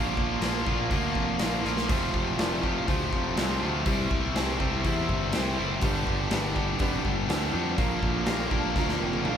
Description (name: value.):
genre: classic rock.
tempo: 122 BPM.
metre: 4/4.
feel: straight.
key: unclear.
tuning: A4 = 440 Hz.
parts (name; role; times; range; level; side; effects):
distorted electric guitar; riff; 0.0-9.4 s; F2 to E4; -31 LUFS; right 6 dB; distortion.
tight distorted guitar; riff; 0.0-9.4 s; F2 to Bb4; -30 LUFS; left 7 dB; distortion.
fuzz fingered electric bass; bass; 0.0-9.4 s; F1 to F2; -32 LUFS; equal; overdrive.
big rock drum kit; drums; 0.2-9.4 s; hi-hat, kick drum, snare drum, splash cymbal, toms; -30 LUFS; equal; none.
warm baby grand piano; accompaniment; 1.9-9.4 s; D4 to Bb5; -36 LUFS; equal; none.
room: light reverb.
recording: band playing live in one room.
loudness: -24 LUFS.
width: side -8 dB against mid.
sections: 0.0-9.4 A section.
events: drum fill 1.6, 8.8-9.4; grand piano fill 8.3-9.4.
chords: 0.0 Bb; 1.9 F; 3.9 C; 5.8 G; 7.8 Bb.